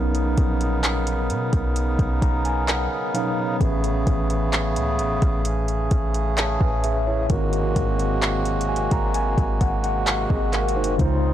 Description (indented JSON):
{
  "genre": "contemporary R&B",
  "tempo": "65 BPM",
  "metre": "4/4",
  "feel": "straight",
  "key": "unclear",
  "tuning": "A4 = 440 Hz",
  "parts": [
    { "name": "mellow tine electric piano", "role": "accompaniment", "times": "0.0-11.3 s", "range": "Ab2 to Bb5", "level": "-26 LUFS", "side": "left 1 dB", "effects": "medium stereo tremolo" },
    { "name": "hand-pumped harmonium", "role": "sustained chords", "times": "0.0-11.3 s", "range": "C3 to Bb4", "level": "-26 LUFS", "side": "right 2 dB", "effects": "none" },
    { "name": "clean 808-style bass", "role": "bass", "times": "0.0-11.3 s", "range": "Gb1 to Cb3", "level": "-24 LUFS", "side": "equal", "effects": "tube saturation" },
    { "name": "smooth R&B drum kit", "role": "drums", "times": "0.1-11.2 s", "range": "handclaps, hi-hat, kick drum", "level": "-24 LUFS", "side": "equal", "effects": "overdrive, vintage 12-bit sampler grit" }
  ],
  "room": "little or no reverb",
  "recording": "blown-out, overdriven recording, overdrive",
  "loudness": "-20 LUFS",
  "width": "side -11 dB against mid",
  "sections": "0.0-11.0 A section",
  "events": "tine electric piano fill 1.8-3.6, 8.2-11.0",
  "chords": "0.0 Cbmaj9; 3.6 Amaj9; 7.3 Ab9"
}